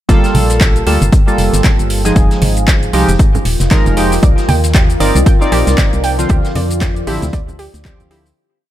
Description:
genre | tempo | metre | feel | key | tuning
deep house | 116 BPM | 4/4 | swing 58% on 16ths | G minor | A4 = 440 Hz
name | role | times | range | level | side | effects
warm analog keys | stabs | 0.1-8.3 s | D3 to D5 | -16 LUFS | right 1 dB | chorus, sidechain pumping, tape echo
organ-like FM bass | bass | 0.1-8.3 s | Eb1 to F2 | -15 LUFS | equal | sidechain pumping
deep house drum kit | drums | 0.1-8.3 s | handclaps, hi-hat, shaker | -21 LUFS | equal | overdrive, studio reverb
electronic kick drum | drums | 0.1-8.0 s | none | -11 LUFS | equal | studio reverb
vintage brush drum kit | drums | 0.1-8.4 s | hi-hat, snare drum | -31 LUFS | right 2 dB | none
deep dark ambient pad | texture | 1.1-8.4 s | F4 to G5 | -22 LUFS | left 1 dB | chorus, built-in reverb, sidechain pumping
congas | percussion | 0.3-8.1 s | none | -19 LUFS | right 2 dB | none
warbly dusty pluck | arpeggios | 4.2-8.2 s | G4 to G5 | -24 LUFS | right 3 dB | chorus, sidechain pumping, tape echo
room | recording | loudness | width
small room reverb | none | -10 LUFS | side -13 dB against mid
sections
0.1-8.4 drop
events
drop 0.1-8.4; fade-out 5.6-8.4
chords
0.1 Gm9; 2.2 Fm9; 4.2 Cm9; 6.3 Dm9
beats
| 0.09 0.61 1.12 1.64 | 2.16 2.68 3.19 3.71 | 4.23 4.75 5.26 5.78 | 6.30 6.82 7.33 7.85

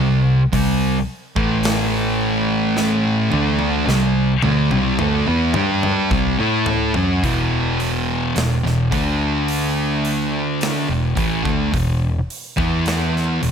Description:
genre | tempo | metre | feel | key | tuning
stoner and doom metal | 54 BPM | 4/4 | straight | E minor | A4 = 437 Hz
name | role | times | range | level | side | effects
thick fuzz guitar | riff | 0.0-13.5 s | E2 to A4 | -20 LUFS | left 8 dB | distortion
thick fuzz guitar | riff | 0.0-13.5 s | E2 to A4 | -20 LUFS | right 9 dB | distortion
vintage muted fingered electric bass | bass | 0.0-13.5 s | E1 to A2 | -25 LUFS | equal | overdrive
big rock drum kit | drums | 0.5-13.5 s | hi-hat, kick drum, snare drum, toms | -26 LUFS | left 1 dB | none
room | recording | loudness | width
small room reverb | none | -16 LUFS | side -7 dB against mid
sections
0.0-7.2 A section; 7.2-13.5 B section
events
drum fill 2.8-7.2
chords
0.0 C5; 1.4 A5; 3.3 C5; 7.2 E5; 8.9 D5; 10.9 E5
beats
0.53 1.65 | 2.76 3.88 5.00 6.12 | 7.24 8.36 9.48 10.61 | 11.73 12.86

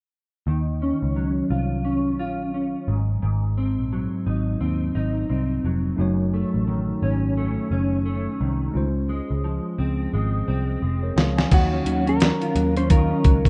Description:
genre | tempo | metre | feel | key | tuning
indie pop, bedroom pop | 87 BPM | 4/4 | swing 60% on 16ths | unclear | A4 = 440 Hz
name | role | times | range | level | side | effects
mellow electric guitar | accompaniment | 0.5-13.5 s | Gb2 to F4 | -27 LUFS | equal | ensemble chorus, vibrato effect
vintage muted picked electric bass | bass | 0.5-13.5 s | F1 to Eb2 | -27 LUFS | equal | none
tine electric piano | accompaniment | 6.0-13.5 s | Gb3 to Ab5 | -35 LUFS | equal | cassette tape
dusty soul sampler-style drum kit | drums | 11.2-13.5 s | crash cymbal, hi-hat, kick drum, snare drum | -21 LUFS | equal | none
clean lap steel guitar | melody | 11.5-13.5 s | Gb4 to C5 | -28 LUFS | equal | analog chorus
room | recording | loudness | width
light reverb, digital ambience | rough home demo mix, nothing above 10.6 kHz | -23 LUFS | mono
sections
0.5-11.5 A section; 11.5-13.5 B section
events
drum fill 10.1-11.5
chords
0.5 Ebm9; 2.9 Ab7; 6.0 Gbm6; 8.8 Dbmaj7; 11.5 Ebm9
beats
| 0.47 1.16 1.85 2.54 | 3.23 3.92 4.61 5.30 | 5.99 6.68 7.37 8.06 | 8.75 9.44 10.13 10.82 | 11.52 12.21 12.89

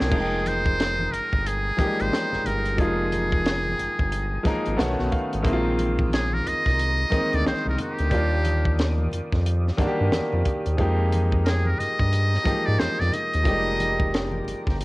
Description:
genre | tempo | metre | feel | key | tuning
R&B, neo-soul | 90 BPM | 4/4 | swing 61% on 16ths | F dorian | A4 = 440 Hz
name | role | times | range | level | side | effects
trumpet with metal mute | melody | 0.0-14.5 s | G4 to Eb5 | -26 LUFS | equal | cassette tape
clear grand piano | accompaniment | 0.0-14.8 s | D3 to A5 | -27 LUFS | equal | cassette tape
round analog bass | bass | 0.0-14.8 s | F1 to Ab2 | -25 LUFS | equal | none
compact cocktail drum kit | drums | 0.0-14.8 s | crash cymbal, hi-hat, kick drum, snare drum | -26 LUFS | equal | cassette tape
percussive tonewheel organ | sustained chords | 0.1-14.8 s | Ab3 to Eb6 | -40 LUFS | equal | chorus vibrato, slow rotary speaker, cassette tape
congas | percussion | 0.1-14.8 s | none | -36 LUFS | left 1 dB | none
room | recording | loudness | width
light reverb, small room reverb | home recording on cassette | -21 LUFS | side -21 dB against mid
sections
0.1-14.8 A section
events
grand piano fill 4.5-5.5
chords
0.1 Fm11; 4.8 B9; 5.5 Bb9sus4; 8.1 Ebmaj9; 10.8 Fm11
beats
| 0.12 0.79 1.45 2.12 | 2.79 3.45 4.12 4.79 | 5.45 6.12 6.79 7.45 | 8.12 8.79 9.45 10.12 | 10.79 11.45 12.12 12.79 | 13.45 14.12 14.79

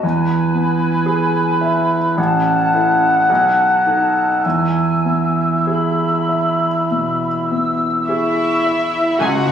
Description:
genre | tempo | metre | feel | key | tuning
classical | 48-60 BPM | 4/4 | rubato | E major | A4 = 441 Hz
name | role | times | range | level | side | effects
clear grand piano | melody | 0.0-9.5 s | A1 to E5 | -19 LUFS | right 1 dB | none
clear clarinet | second line | 0.0-9.4 s | C#4 to G#4 | -25 LUFS | left 3 dB | none
flute section | second line | 0.0-9.3 s | G#5 to E6 | -25 LUFS | left 3 dB | none
mellow oboe | second line | 0.0-9.5 s | B4 to F#5 | -18 LUFS | equal | none
warm studio violin section | second line | 8.1-9.5 s | E5 to F#5 | -22 LUFS | left 4 dB | none
warm studio cello section | bass | 8.1-9.5 s | E4 to F#4 | -20 LUFS | right 1 dB | none
warm studio violin section | melody | 9.2-9.3 s | G#5 | -25 LUFS | left 3 dB | none
dark studio viola section | accompaniment | 9.2-9.3 s | G#4 to E5 | -26 LUFS | right 2 dB | none
warm French horn section | sustained chords | 9.2-9.5 s | G#3 to G#4 | -26 LUFS | left 3 dB | none
dark studio double bass section | bass | 9.2-9.5 s | C#2 | -24 LUFS | right 2 dB | none
room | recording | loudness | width
moderate concert hall reverb, RT60 1.9 s | recorded on a phone in the room, club reverb | -14 LUFS | side -8 dB against mid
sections
0.0-9.2 A section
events
none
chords
0.0 E; 2.2 A; 3.3 B7; 4.4 E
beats
| 0.03 1.06 2.18 3.29 | 4.44 5.66 6.89 8.07 | 9.21

